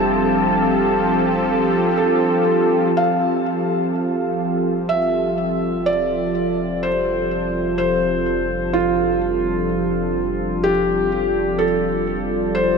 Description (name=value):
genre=ambient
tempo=62 BPM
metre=3/4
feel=straight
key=unclear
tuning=A4 = 440 Hz
part: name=felt-muted upright piano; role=melody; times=0.0-12.8 s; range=F4 to A5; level=-21 LUFS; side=equal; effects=ping-pong delay
part: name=warm analog pad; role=sustained chords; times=0.0-12.8 s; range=F3 to A4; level=-20 LUFS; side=right 1 dB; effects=chorus
part: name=round analog bass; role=bass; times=0.0-12.8 s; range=F1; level=-34 LUFS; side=equal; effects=none
part: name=analog drone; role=drone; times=0.0-12.8 s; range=G3 to D4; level=-29 LUFS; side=equal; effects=chorus
part: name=wind-like tuned noise texture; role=texture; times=0.0-3.0 s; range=A4 to A5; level=-26 LUFS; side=left 1 dB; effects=built-in reverb
room=wet huge ambient reverb, RT60 8.3 s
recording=none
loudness=-17 LUFS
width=side -5 dB against mid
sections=0.0-3.0 A section; 3.0-12.8 A section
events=fade-out on analog synth bass 0.0-3.0; fade-in on analog synth bass 3.0-12.8; fade-in on synth drone 3.0-12.8; filter sweep on analog synth pad 3.0-12.8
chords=0.0 F